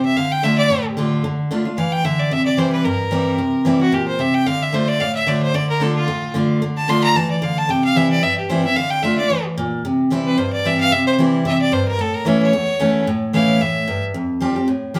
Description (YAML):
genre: bluegrass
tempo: 223 BPM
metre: 4/4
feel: swing 54% on 8ths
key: D minor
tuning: A4 = 441 Hz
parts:
  - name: clear fiddle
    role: melody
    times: 0.0-14.0 s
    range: F4 to C6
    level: -22 LUFS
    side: equal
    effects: none
  - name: picked steel-string acoustic guitar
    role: accompaniment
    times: 0.0-15.0 s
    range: E2 to G4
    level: -20 LUFS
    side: equal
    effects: none
room: wet studio reverb, RT60 0.8 s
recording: heard from further back in the room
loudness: -18 LUFS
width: mono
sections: 0.0-1.2 A section; 1.2-9.8 A section; 9.8-15.0 B section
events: none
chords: 0.2 Dm; 2.3 C; 4.5 Dm; 7.7 C; 8.8 Dm; 9.8 C; 12.0 A; 14.2 Fadd9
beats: | 0.17 0.44 0.71 0.97 | 1.24 1.51 1.78 2.05 | 2.32 2.58 2.85 3.12 | 3.39 3.66 3.93 4.20 | 4.47 4.74 5.00 5.27 | 5.54 5.81 6.08 6.35 | 6.62 6.88 7.15 7.42 | 7.69 7.96 8.23 8.50 | 8.77 9.04 9.31 9.58 | 9.85 10.11 10.38 10.65 | 10.92 11.19 11.46 11.73 | 12.00 12.27 12.54 12.80 | 13.07 13.34 13.61 13.88 | 14.15 14.42 14.69 14.96